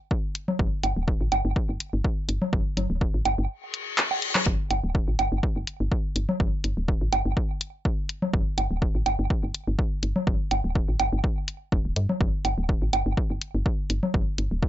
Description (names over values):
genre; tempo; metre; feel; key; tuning
minimal techno; 124 BPM; 4/4; swing 54% on 16ths; unclear; A4 = 439 Hz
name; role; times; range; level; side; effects
electronic kick drum; drums; 0.1-14.7 s; none; -26 LUFS; equal; overdrive
punchy analog drum machine; drums; 0.4-14.5 s; handclaps, hi-hat; -26 LUFS; left 1 dB; overdrive
congas and woodblock; percussion; 0.5-14.1 s; none; -28 LUFS; right 2 dB; overdrive, digital delay
woody FM bass; bass; 0.6-14.7 s; D1 to G2; -27 LUFS; equal; sidechain pumping
reverse cymbal; sound effects; 3.7-4.5 s; none; -29 LUFS; left 5 dB; none
room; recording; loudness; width
little or no reverb; nothing above 7.7 kHz; -24 LUFS; side -12 dB against mid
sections
0.0-14.7 A section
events
kick drops out 3.5-4.5; reverse cymbal 3.7-4.5; drum fill 4.0-4.5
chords
none